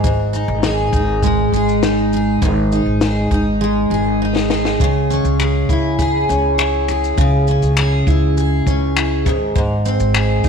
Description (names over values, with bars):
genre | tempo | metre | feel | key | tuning
acoustic pop | 101 BPM | 4/4 | straight | C# minor | A4 = 440 Hz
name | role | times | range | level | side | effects
picked steel-string acoustic guitar | accompaniment | 0.0-10.5 s | G#2 to G#4 | -16 LUFS | equal | double-tracked left and right
upright bass | bass | 0.0-10.5 s | G#1 to C#2 | -20 LUFS | equal | none
compact cocktail drum kit | drums | 0.0-10.5 s | finger snaps, kick drum, shaker, snare drum | -20 LUFS | left 2 dB | none
room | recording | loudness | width
light reverb, small room ambience | 1960s-style stereo | -14 LUFS | side -6 dB against mid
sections
0.0-4.8 A section; 4.8-10.5 B section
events
drum fill 3.6-4.8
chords
0.0 G#5; 4.8 C#m; 9.3 G#